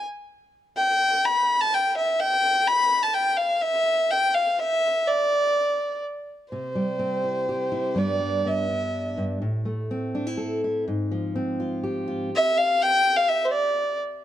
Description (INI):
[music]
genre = folk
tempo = 125 BPM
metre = 3/4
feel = straight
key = C major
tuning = A4 = 437 Hz
[part]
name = dark fiddle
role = melody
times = 0.0-9.2, 12.4-14.0 s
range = C5 to B5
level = -21 LUFS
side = equal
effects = none
[part]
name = fingerpicked steel-string acoustic guitar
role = accompaniment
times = 6.5-13.8 s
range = G2 to B4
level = -27 LUFS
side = equal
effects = none
[sound]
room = light reverb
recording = dark, warm production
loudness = -21 LUFS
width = side -11 dB against mid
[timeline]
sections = 0.0-6.5 A section; 6.5-12.3 B section; 12.3-14.2 A section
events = none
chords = 0.0 N.C.; 6.5 C; 8.0 G; 9.4 Am; 10.9 Fmadd9/Ab; 12.3 N.C.